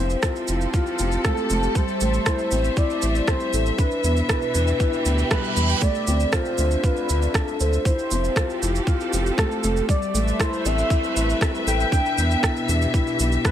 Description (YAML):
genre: piano and strings electronica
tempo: 118 BPM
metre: 4/4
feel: straight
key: A minor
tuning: A4 = 440 Hz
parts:
  - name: warm velvety synth lead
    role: melody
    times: 0.0-13.5 s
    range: A4 to G5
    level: -27 LUFS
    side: equal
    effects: chorus
  - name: dark studio string section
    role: sustained chords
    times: 0.0-13.5 s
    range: B2 to E5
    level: -28 LUFS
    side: equal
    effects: sidechain pumping
  - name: felt-muted upright piano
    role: riff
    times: 0.0-13.5 s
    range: G3 to C5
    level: -26 LUFS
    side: left 2 dB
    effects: ping-pong delay
  - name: round analog bass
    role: bass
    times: 0.0-13.4 s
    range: F1 to E2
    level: -22 LUFS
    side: equal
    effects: sidechain pumping
  - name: electronic shaker and rim click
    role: drums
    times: 0.1-13.5 s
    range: none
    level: -28 LUFS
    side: right 2 dB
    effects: none
  - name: electronic kick drum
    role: drums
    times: 0.2-13.5 s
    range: none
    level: -22 LUFS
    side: equal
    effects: none
  - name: reverse cymbal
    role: sound effects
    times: 5.0-5.8 s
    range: none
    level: -30 LUFS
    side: right 8 dB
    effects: none
room: little or no reverb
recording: none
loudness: -19 LUFS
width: side -10 dB against mid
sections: 0.0-13.5 A section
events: reverse cymbal 5.0-5.8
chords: 0.0 Fmaj7; 1.8 Am7; 3.8 Em7; 5.8 Dm7; 7.9 Fmaj7; 9.9 Am7; 11.9 Em7